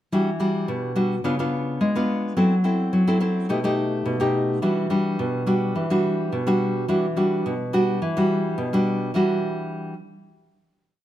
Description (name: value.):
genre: samba.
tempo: 106 BPM.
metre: 4/4.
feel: straight.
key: E minor.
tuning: A4 = 441 Hz.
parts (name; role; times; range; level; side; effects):
nylon-string guitar; solo; 0.1-9.9 s; B2 to A4; -20 LUFS; equal; none.
room: wet large studio reverb, RT60 1.3 s.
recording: none.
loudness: -20 LUFS.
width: side -12 dB against mid.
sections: 0.1-9.1 A section; 9.1-11.0 final chord.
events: none.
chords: 0.1 Em9; 1.2 C#7b9; 2.4 F#m7b5; 3.5 Baug7; 4.6 Em9.